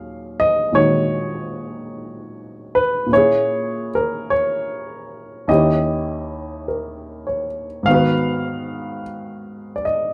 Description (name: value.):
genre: jazz ballad.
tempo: 50 BPM.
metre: 4/4.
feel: swing 68% on 8ths.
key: Eb minor.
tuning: A4 = 440 Hz.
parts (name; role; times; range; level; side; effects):
warm baby grand piano; solo; 0.0-10.1 s; Eb2 to F5; -21 LUFS; equal; none.
room: light reverb.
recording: none.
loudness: -20 LUFS.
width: mono.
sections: 0.0-10.1 A section.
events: none.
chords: 0.0 Ebm11; 3.1 Bbm7b5; 5.5 Eb7b9; 7.9 Abm7.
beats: 0.72 1.91 | 3.10 4.29 5.48 6.67 | 7.86 9.04.